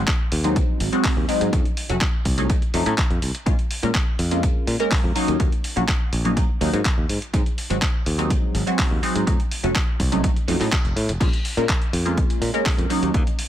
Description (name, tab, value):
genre	filtered disco house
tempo	124 BPM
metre	4/4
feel	straight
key	Bb minor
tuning	A4 = 436 Hz
part	funky polysynth comp	accompaniment	0.0-13.3 s	Gb3 to Bb4	-24 LUFS	equal	chorus, phaser, sidechain pumping
part	modern bright fingered electric bass	bass	0.0-13.2 s	F1 to Bb2	-24 LUFS	equal	sidechain pumping
part	dusty soul sampler-style drum kit	drums	0.1-13.5 s	crash cymbal, handclaps, hi-hat	-28 LUFS	equal	sidechain pumping on hats, sidechain pumping on cymbals
part	electronic kick drum	drums	0.1-13.2 s	none	-22 LUFS	equal	none
room	digital ambience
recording	none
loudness	-19 LUFS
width	side -11 dB against mid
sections	0.0-11.2 A section; 11.2-13.5 A section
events	drop 0.0-11.2, 11.2-13.5; band accent 10.7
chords	0.0 Ab7; 1.5 F7b9b13; 3.5 Bbm7; 5.2 Ebm7; 7.1 Ab7; 9.3 F7b9b13; 11.2 Bbm7; 12.9 Ebm7